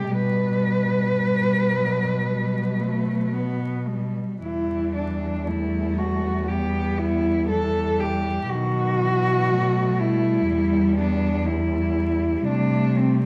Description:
classical, lyrical piece for cello ensemble; 55-62 BPM; 4/4; rubato; E minor; A4 = 440 Hz
dark cello; melody; 0.0-13.3 s; C4 to B4; -27 LUFS; equal
rich cello; second line; 0.0-13.3 s; F#3 to B3; -32 LUFS; equal
warm cello; accompaniment; 0.0-13.3 s; D#3 to B3; -29 LUFS; equal
dark cello; bass; 0.0-13.3 s; E2 to C3; -28 LUFS; equal
moderate scoring stage reverb, RT60 1.4 s; dark, warm production, vinyl crackle; -23 LUFS; mono
0.0-13.3 A section
0.1 Gmaj7/B; 2.3 B5; 4.4 Em; 8.5 B7; 10.5 Em; 12.5 C5
| 0.12 1.20 2.27 3.35 | 4.42 5.47 6.49 7.50 | 8.51 9.51 10.49 11.47 | 12.48

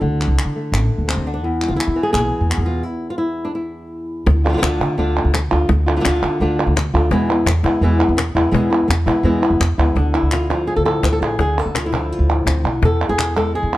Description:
flamenco; 169 BPM; 4/4; straight; A4 = 442 Hz
flamenco guitar; melody; 0.0-13.8 s; E2 to B4; -19 LUFS; equal
upright bass; bass; 0.0-13.8 s; A1 to E3; -18 LUFS; equal
palmas hand claps; percussion; 0.2-13.8 s; -24 LUFS; right 3 dB
cajon; percussion; 4.3-13.5 s; -24 LUFS; left 4 dB
light reverb; dark, warm production; -15 LUFS; side -16 dB against mid
0.0-4.3 A section; 4.3-10.0 B section; 10.0-13.8 C section
stop 2.9-4.3
0.0 D5; 1.4 E; 4.3 Dm; 7.1 E; 10.0 Dm; 12.8 E
| 0.02 0.38 0.73 1.08 | 1.44 1.79 2.15 2.50 | 2.86 3.21 3.57 3.92 | 4.28 4.63 4.99 5.34 | 5.70 6.05 6.41 6.76 | 7.12 7.47 7.83 8.19 | 8.54 8.90 9.26 9.61 | 9.97 10.33 10.69 11.04 | 11.40 11.76 12.12 12.47 | 12.83 13.19 13.54

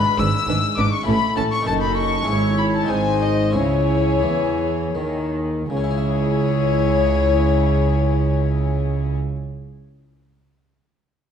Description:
classical, baroque-style concerto movement with solo episodes; 78-102 BPM; 3/4; straight; C# minor; A4 = 440 Hz
rich chamber violin section; melody; 0.0-9.1 s; C#5 to E6; -29 LUFS; left 8 dB
warm violin; melody; 0.0-9.2 s; C#5 to E6; -24 LUFS; left 6 dB
harpsichord; accompaniment; 0.0-9.4 s; F#2 to E5; -29 LUFS; right 1 dB
warm chamber violin section; second line; 0.2-9.1 s; G#4 to C#5; -28 LUFS; left 3 dB
warm chamber viola section; accompaniment; 0.2-9.2 s; C#4 to E4; -27 LUFS; left 3 dB
rich chamber cello section; bass; 0.2-9.2 s; F#2 to E3; -24 LUFS; right 2 dB
warm studio double bass section; bass; 0.2-9.1 s; F#1 to E2; -23 LUFS; right 2 dB
wet recital hall reverb, RT60 1.4 s; dark, warm production; -17 LUFS; side -8 dB against mid
0.0-5.7 A section; 5.7-10.3 B section
slowing down 0.8-5.7
0.0 E7/G#; 1.1 A; 1.7 D#m7b5/F#; 2.3 C#m/G#; 2.9 G#; 3.6 C#m
0.48 1.07 | 1.67 2.28 2.90 | 3.55 4.23 4.95 | 5.70 6.47 7.24 | 8.01 8.78

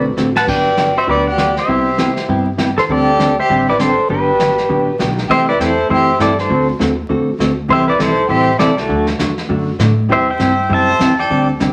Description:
country, western swing; 200 BPM; 4/4; swing 61% on 8ths; A4 = 436 Hz
pedal steel guitar; melody; 0.0-11.5 s; F#4 to A5; -18 LUFS; equal
clear fiddle; second line; 0.0-11.5 s; A3 to C5; -24 LUFS; equal
vintage hollow-body jazz guitar; accompaniment; 0.0-11.7 s; C3 to A4; -19 LUFS; equal
upright bass; bass; 0.0-11.7 s; G1 to A2; -25 LUFS; equal
vintage brush drum kit; drums; 0.2-11.7 s; brushed snare drum, crash cymbal, hi-hat, kick drum, snare drum; -26 LUFS; equal
wet studio reverb, RT60 0.8 s; vinyl crackle; -15 LUFS; mono
0.0-5.3 A section; 5.3-11.7 B section
drum fill 0.2-0.5
0.5 Gmaj7; 1.7 Cmaj7; 2.9 D7sus4; 4.1 Gmaj7; 5.3 C6; 6.5 D7; 7.7 Am7; 8.9 D; 10.1 C
0.18 | 0.48 0.78 1.08 1.38 | 1.68 1.98 2.28 2.58 | 2.89 3.19 3.49 3.79 | 4.09 4.39 4.69 4.99 | 5.29 5.59 5.89 6.19 | 6.49 6.79 7.09 7.39 | 7.69 7.99 8.29 8.60 | 8.89 9.20 9.49 9.80 | 10.10 10.40 10.70 11.00 | 11.30 11.60

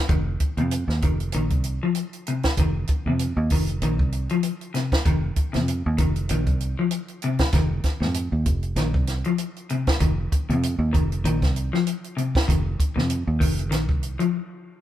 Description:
afrobeat; 97 BPM; 4/4; swing 56% on 16ths; A4 = 440 Hz
electric guitar at the edge of break-up; arpeggios; 0.1-14.4 s; Ab2 to F3; -26 LUFS; left 3 dB; spring reverb
fingered electric bass; bass; 0.1-14.2 s; F1 to F2; -24 LUFS; right 1 dB
compact cocktail drum kit; drums; 0.1-14.3 s; hi-hat, kick drum, snare drum; -23 LUFS; equal
light reverb; band playing live in one room; -21 LUFS; side -12 dB against mid
0.0-14.8 A section
break 14.3-14.8
0.0 F7(no3)
| 0.10 0.72 1.34 1.96 | 2.58 3.20 3.82 4.44 | 5.06 5.68 6.30 6.92 | 7.54 8.15 8.78 9.39 | 10.01 10.63 11.25 11.87 | 12.49 13.11 13.72 14.34

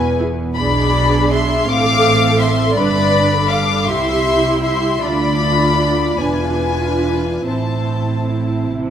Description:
classical, slow romantic movement for string orchestra; 47-56 BPM (dotted quarters); 6/8; rubato; A minor; A4 = 440 Hz
warm chamber violin section; melody; 0.0-8.7 s; G#5 to D6; -20 LUFS; left 5 dB
warm symphonic violin section; second line; 0.0-8.7 s; B4 to F5; -21 LUFS; left 3 dB
dark chamber double bass section; bass; 0.0-8.9 s; E1 to D2; -22 LUFS; right 3 dB
warm symphonic cello section; bass; 0.0-8.9 s; C2 to C3; -22 LUFS; right 3 dB
dark symphonic viola section; accompaniment; 0.2-8.9 s; C4 to B4; -19 LUFS; right 2 dB
moderate concert hall reverb, RT60 2.0 s; -14 LUFS; side -9 dB against mid
0.0-8.9 A section
0.0 E; 0.6 E7b13/B; 1.7 Am; 2.8 G; 3.9 C; 5.0 Bdim/D; 6.2 E7b9; 7.5 Am
| 0.57 1.69 | 2.78 3.89 | 5.04 6.22 | 7.48 8.72

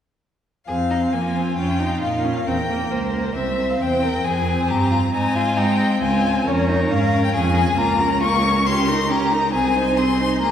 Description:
quick classical-period movement for string quartet; 136 BPM; 4/4; rubato; F minor; A4 = 439 Hz
rich violin; melody; 0.7-10.5 s; C5 to Db6; -22 LUFS; left 4 dB
rich violin; second line; 0.7-10.5 s; Eb4 to C5; -25 LUFS; equal
rich viola; accompaniment; 0.7-10.5 s; Bb3 to Eb4; -23 LUFS; equal
rich cello; bass; 0.7-10.5 s; C2 to Ab3; -22 LUFS; right 2 dB
wet concert hall reverb, RT60 2.1 s; heard from further back in the room; -17 LUFS; side -9 dB against mid
0.7-10.5 A section
0.7 Fm; 1.6 Gm7b5/F; 2.5 C7; 4.3 Fm; 5.1 Ab; 6.0 Db; 7.8 Bbm/Db; 8.7 Eb7/Db; 9.5 Ab/C
| 0.68 1.13 1.57 2.02 | 2.47 2.91 3.36 3.81 | 4.25 4.70 5.14 5.58 | 6.03 6.47 6.91 7.34 | 7.78 8.21 8.65 9.09 | 9.53 9.97 10.41

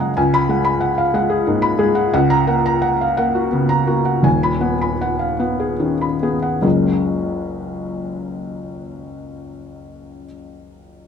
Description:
neoclassical minimalist piano; 48-62 BPM (dotted quarters); 6/8; rubato; F# major; A4 = 440 Hz
felt-muted upright piano; solo; 0.0-11.1 s; D#1 to B5; -16 LUFS; left 1 dB
light reverb; band playing live in one room; -16 LUFS; side -7 dB against mid
0.0-6.6 A section; 6.6-11.1 B section
slowing down 1.1-6.6
0.2 C#7sus4; 2.1 F#/C#; 4.3 B6/D#; 6.6 F#add9
| 0.17 1.14 | 2.12 3.16 | 4.25 5.41 | 6.64 7.84 | 9.03 10.23

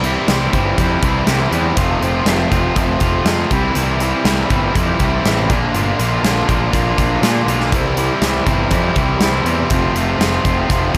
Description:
classic rock; 121 BPM; 4/4; straight; C mixolydian; A4 = 440 Hz
crunchy overdriven guitar; riff; 0.0-11.0 s; F2 to F4; -21 LUFS; equal
distorted electric guitar; riff; 0.0-11.0 s; F2 to F4; -25 LUFS; equal; distortion
fuzz picked electric bass; bass; 0.0-11.0 s; F1 to Bb2; -22 LUFS; equal; overdrive
big rock drum kit; drums; 0.0-11.0 s; hi-hat, kick drum, snare drum; -22 LUFS; equal
light reverb, small room ambience; -16 LUFS; mono
0.0-11.0 A section
0.0 C; 1.8 F; 3.5 C; 5.5 Bb; 7.7 C; 9.7 F
0.28 0.78 1.28 | 1.77 2.27 2.76 3.26 | 3.76 4.25 4.75 5.24 | 5.74 6.24 6.73 7.23 | 7.72 8.22 8.71 9.21 | 9.70 10.20 10.70

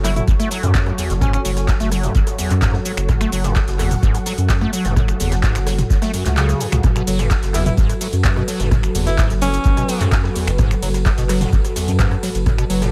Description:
acid house; 128 BPM; 4/4; straight; F# minor; A4 = 441 Hz
bright alto saxophone; melody; 0.0-1.4, 7.5-10.1 s; C#4 to E4; -28 LUFS; equal; tape echo
warm analog pad; sustained chords; 0.0-12.9 s; F#3 to F#5; -28 LUFS; equal; chorus, sidechain pumping
liquid acid bass; riff; 0.0-12.9 s; E2 to A3; -26 LUFS; equal; overdrive, analog chorus, tape echo
saturated sub bass; bass; 0.0-12.9 s; F#1 to F#2; -23 LUFS; equal; tube saturation, sidechain pumping
deep reggae drum kit; drums; 0.0-12.9 s; hi-hat, snare drum; -39 LUFS; equal
electro analog drum machine; drums; 0.0-12.9 s; cabasa, finger snaps, handclaps, hi-hat, ride cymbal, rim click, toms; -27 LUFS; equal; dub echo
electronic kick drum; drums; 0.3-12.6 s; -20 LUFS; equal
light reverb, small room ambience; echo-heavy mix; -18 LUFS; mono
0.0-12.9 A section
kick drops out 6.4-6.8
0.0 F#m
0.28 0.75 | 1.22 1.68 2.15 2.62 | 3.09 3.56 4.03 4.50 | 4.96 5.43 5.90 6.37 | 6.84 7.31 7.78 8.25 | 8.71 9.18 9.65 10.12 | 10.59 11.06 11.53 12.00 | 12.46

